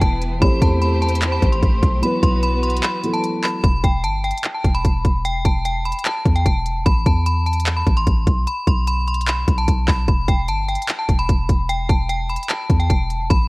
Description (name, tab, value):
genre	hip hop, trap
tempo	149 BPM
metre	4/4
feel	half-time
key	E minor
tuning	A4 = 443 Hz
part	metallic FM bell	melody	0.0-13.5 s	G5 to C6	-23 LUFS	equal	chorus, low-pass filter
part	dark concert grand piano	accompaniment	0.0-3.7 s	E3 to C5	-24 LUFS	equal	low-pass filter
part	clear symphonic string section	sustained chords	0.0-3.6 s	E3 to C5	-27 LUFS	left 1 dB	none
part	warm 808-style bass	bass	0.0-13.5 s	E1 to E2	-20 LUFS	equal	none
part	trap drum kit	drums	0.0-13.4 s	handclaps, hi-hat, kick drum	-18 LUFS	equal	none
room	digital ambience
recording	worn, warbling old tape, cassette tape, warbly pitch drift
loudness	-16 LUFS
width	side -24 dB against mid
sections	0.0-3.6 A section; 3.6-13.5 B section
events	break 2.8-3.6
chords	0.4 Am7; 2.0 Bsus4; 3.6 Em; 6.9 Am; 8.5 Amadd9/B (rootless); 10.1 Em